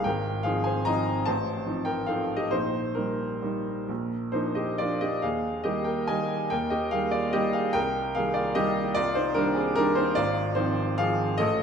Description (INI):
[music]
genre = classical, piano waltz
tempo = 129-156 BPM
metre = 3/4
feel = rubato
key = Eb major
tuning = A4 = 441 Hz
[part]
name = clear upright piano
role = solo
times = 0.0-11.6 s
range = Ab1 to Bb5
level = -24 LUFS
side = equal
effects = none
[sound]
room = wet recital hall reverb, RT60 1.7 s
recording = dark, warm production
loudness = -24 LUFS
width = side -7 dB against mid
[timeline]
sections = 0.0-11.6 A section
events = none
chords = 0.1 Fm7/Ab; 1.3 F7/A; 2.5 Eb/Bb; 3.9 Bb; 5.2 Eb; 7.8 Cm7; 10.2 Fm7/Ab